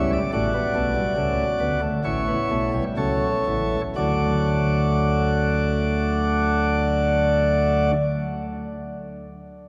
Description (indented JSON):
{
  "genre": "classical, baroque-style 4-part fugue for pipe organ",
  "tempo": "60-74 BPM",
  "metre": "4/4",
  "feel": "straight",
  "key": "D major",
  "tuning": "A4 = 440 Hz",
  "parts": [
    { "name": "chamber organ, principal chorus", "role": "solo", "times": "0.0-7.9 s", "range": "A1 to D5", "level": "-22 LUFS", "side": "equal", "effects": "none" }
  ],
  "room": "wet cathedral reverb, RT60 4.8 s",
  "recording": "recorded in a church or concert hall",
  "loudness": "-22 LUFS",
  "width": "mono",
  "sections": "0.0-3.9 A section; 3.9-8.0 B section",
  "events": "slowing down 0.0-3.9",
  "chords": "0.3 A7sus4; 2.0 A7; 3.9 D"
}